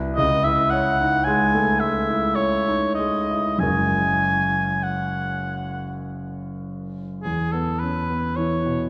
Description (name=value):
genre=classical, impressionist duo for oboe and grand piano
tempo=47-56 BPM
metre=3/4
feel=rubato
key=E major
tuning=A4 = 440 Hz
part: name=clear grand piano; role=accompaniment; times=0.0-8.9 s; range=F#1 to C#5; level=-26 LUFS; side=equal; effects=none
part: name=clear oboe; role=melody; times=0.2-8.9 s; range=G#4 to G#5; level=-24 LUFS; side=equal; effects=none
room=wet concert hall reverb, RT60 2.4 s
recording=heard from further back in the room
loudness=-22 LUFS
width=mono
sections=0.0-7.3 A section; 7.3-8.9 B section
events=none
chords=0.2 C#madd9; 3.6 F#9; 7.3 E5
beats=| 0.17 1.27 2.39 | 3.63 4.86 6.07 | 7.26 8.38